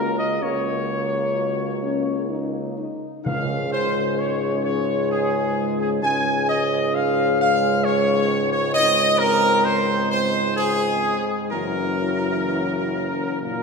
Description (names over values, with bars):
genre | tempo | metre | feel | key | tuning
classical | 65 BPM | 3/4 | straight | unclear | A4 = 440 Hz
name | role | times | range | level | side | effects
clear trumpet section | melody | 0.0-13.6 s | Ab4 to Ab5 | -22 LUFS | equal | none
clear trombone section | sustained chords | 0.0-13.6 s | Gb2 to Bb3 | -27 LUFS | right 3 dB | none
mellow French horn section | sustained chords | 0.0-13.6 s | Bb3 to Ab4 | -27 LUFS | left 7 dB | none
clear tuba | bass | 0.0-13.6 s | Gb1 to Db2 | -26 LUFS | right 2 dB | none
timpani | percussion | 3.3-4.6 s | Db3 | -30 LUFS | right 2 dB | none
room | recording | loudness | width
wet concert hall reverb, RT60 1.7 s | minimal, uncompressed stereo recording | -19 LUFS | side -4 dB against mid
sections
0.0-13.6 A section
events
none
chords
0.0 Gb/Db; 3.3 Db5; 8.8 Ab/Db; 11.5 Gb7